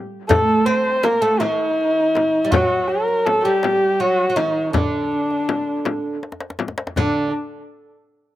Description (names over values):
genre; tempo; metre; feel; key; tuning
Persian modal ensemble; 54 BPM (dotted quarters); 6/8; straight; D dastgah homayun; A4 = 438 Hz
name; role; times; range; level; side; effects
dark kamancheh; melody; 0.3-7.3 s; D4 to C5; -18 LUFS; left 1 dB; slapback echo
oud; second line; 0.3-7.3 s; D3 to C4; -23 LUFS; right 4 dB; none
frame drum; percussion; 0.3-7.3 s; none; -23 LUFS; left 5 dB; none
tombak; percussion; 0.3-7.3 s; none; -24 LUFS; left 1 dB; none
room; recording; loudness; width
light reverb; recorded outdoors, with no room sound; -17 LUFS; side -14 dB against mid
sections
0.0-7.0 A section; 7.0-8.4 B section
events
drum fill 6.2-7.0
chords
none